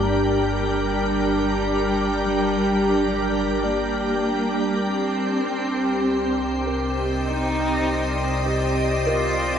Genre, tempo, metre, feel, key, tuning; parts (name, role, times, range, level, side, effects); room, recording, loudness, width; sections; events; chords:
ambient; 50 BPM; 4/4; straight; C minor; A4 = 441 Hz
dark cello; melody; 0.0-9.6 s; G3 to F4; -28 LUFS; equal; tape echo
soft additive organ-like pad; sustained chords; 0.0-9.6 s; G3 to Eb5; -21 LUFS; equal; ensemble chorus, built-in reverb
felt-muted upright piano; arpeggios; 0.0-9.6 s; G4 to D6; -32 LUFS; equal; tape echo
deep rumbling drone; bass; 0.0-9.6 s; G1 to C2; -29 LUFS; equal; built-in reverb
wet shimmer reverb, RT60 8.4 s; -20 LUFS; side -8 dB against mid
0.0-9.6 A section
0.0 Gm; 4.9 Cm7